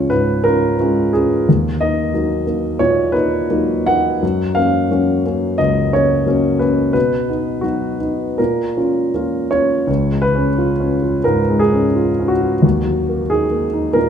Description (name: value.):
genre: neoclassical minimalist piano.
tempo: 79-91 BPM.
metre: 4/4.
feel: rubato.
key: Eb minor.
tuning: A4 = 441 Hz.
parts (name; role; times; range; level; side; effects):
warm grand piano; solo; 0.0-14.1 s; Db2 to Gb5; -14 LUFS; equal; none.
room: moderate scoring stage reverb, RT60 1.6 s.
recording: minimal, uncompressed stereo recording.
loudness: -14 LUFS.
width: side -8 dB against mid.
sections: 0.0-9.9 A section; 9.9-14.1 B section.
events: none.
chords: 0.0 Db; 1.5 Ebm; 4.2 Gb; 6.9 B; 8.4 Bbm; 9.9 Db; 12.6 Ebm.